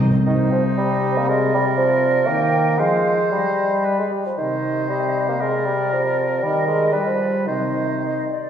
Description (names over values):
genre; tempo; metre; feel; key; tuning
quick classical-period movement for symphony orchestra; 106-123 BPM; 2/4; rubato; C minor; A4 = 440 Hz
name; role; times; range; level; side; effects
clear oboe; second line; 0.3-8.3 s; Eb4 to C5; -27 LUFS; right 2 dB; none
flute section; second line; 0.3-8.5 s; C5 to G5; -28 LUFS; right 1 dB; none
mellow bassoon; accompaniment; 0.3-8.3 s; Eb3 to Bb3; -20 LUFS; right 2 dB; none
dark French horn section; sustained chords; 0.3-8.3 s; C3 to G3; -25 LUFS; left 4 dB; none
room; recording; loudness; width
wet concert hall reverb, RT60 1.7 s; recorded in a church or concert hall; -17 LUFS; side -8 dB against mid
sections
0.3-8.5 A section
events
none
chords
0.3 Cm; 1.3 Bb/C; 2.3 Eb; 2.8 Fm; 3.3 Cm/G; 3.9 G; 4.4 Cm; 5.4 Bb/C; 6.4 Eb; 6.9 G; 7.5 Cm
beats
| 0.26 0.78 | 1.28 1.77 | 2.27 2.79 | 3.32 3.86 | 4.38 4.90 | 5.42 5.92 | 6.42 6.93 | 7.47 8.03